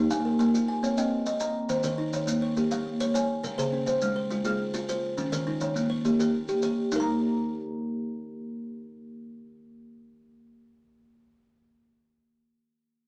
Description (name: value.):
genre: southern african traditional, mbira-style interlocking cycle.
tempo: 138 BPM (dotted quarters).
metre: 12/8.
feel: straight.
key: unclear.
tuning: A4 = 441 Hz.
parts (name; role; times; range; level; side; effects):
buzzing kalimba; arpeggios; 0.0-11.2 s; Db3 to Bb5; -31 LUFS; equal; none.
kalimba; arpeggios; 0.0-11.2 s; Db3 to Bb5; -32 LUFS; equal; none.
maracas; percussion; 0.1-7.1 s; none; -42 LUFS; equal; none.
room: moderate large studio reverb, RT60 0.8 s.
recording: none.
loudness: -28 LUFS.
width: mono.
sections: 0.0-6.9 A section; 6.9-10.4 B section.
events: none.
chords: 0.0 Bbm; 0.8 Cm; 1.7 Eb5; 2.6 Bbm; 3.4 Db; 5.2 Eb; 6.9 N.C..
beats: 0.40 0.83 1.26 | 1.70 2.13 2.57 3.00 | 3.44 3.87 4.31 4.74 | 5.18 5.61 6.05 6.48 | 6.92 7.35 7.79 8.22 | 8.66 9.09 9.53 9.96.